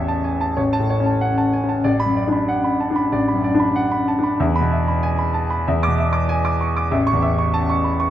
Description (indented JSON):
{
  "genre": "classical, virtuoso piano study",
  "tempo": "95 BPM",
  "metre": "4/4",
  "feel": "rubato",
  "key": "A major",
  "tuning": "A4 = 440 Hz",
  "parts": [
    { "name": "clear concert grand piano", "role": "solo", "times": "0.0-8.1 s", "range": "A1 to D6", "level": "-17 LUFS", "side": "equal", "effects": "none" }
  ],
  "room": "moderate recital hall reverb, RT60 1.4 s",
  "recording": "none",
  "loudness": "-17 LUFS",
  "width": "side -12 dB against mid",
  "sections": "0.0-8.1 A section",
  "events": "none",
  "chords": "0.0 A; 0.6 F#m/A; 1.9 Bm/A; 4.4 E; 5.7 E7; 6.9 A"
}